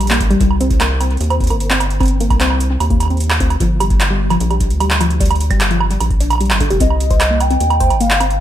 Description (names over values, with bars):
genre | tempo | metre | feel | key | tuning
IDM | 150 BPM | 4/4 | straight | C minor | A4 = 441 Hz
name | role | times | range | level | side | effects
rubbery square bass | bass | 0.0-8.4 s | F1 to Eb2 | -17 LUFS | equal | none
electro analog drum machine | drums | 0.0-8.4 s | handclaps, hi-hat, woodblock | -18 LUFS | right 3 dB | overdrive
warbly dusty pluck | arpeggios | 0.1-8.3 s | D3 to C5 | -20 LUFS | left 2 dB | chorus, digital delay
electronic kick drum | drums | 0.2-7.9 s | none | -17 LUFS | equal | overdrive
warbly nostalgic lead | melody | 6.8-8.4 s | Eb5 to G5 | -17 LUFS | left 1 dB | lush chorus
room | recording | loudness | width
little or no reverb | none | -12 LUFS | side -11 dB against mid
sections
0.0-8.4 A section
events
none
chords
0.4 Cm; 3.6 Gm7; 6.8 Cm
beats
0.01 | 0.41 0.81 1.21 1.60 | 2.00 2.40 2.81 3.21 | 3.60 4.00 4.41 4.80 | 5.21 5.61 6.00 6.41 | 6.80 7.21 7.61 8.01